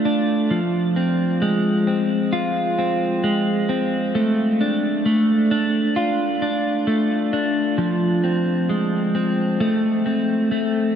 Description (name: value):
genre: dream pop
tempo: 66 BPM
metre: 4/4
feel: straight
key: unclear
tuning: A4 = 440 Hz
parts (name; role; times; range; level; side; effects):
- clean electric guitar; solo; 0.0-11.0 s; F3 to F4; -18 LUFS; equal; wide subtle chorus, tape echo
room: wet huge ambient reverb, RT60 7.5 s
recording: dreamy mix soaked in reverb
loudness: -18 LUFS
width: side -8 dB against mid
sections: 0.0-11.0 A section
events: none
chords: 0.0 Asus4; 0.5 Fm; 4.1 Dm/A; 7.8 Fm; 9.6 Am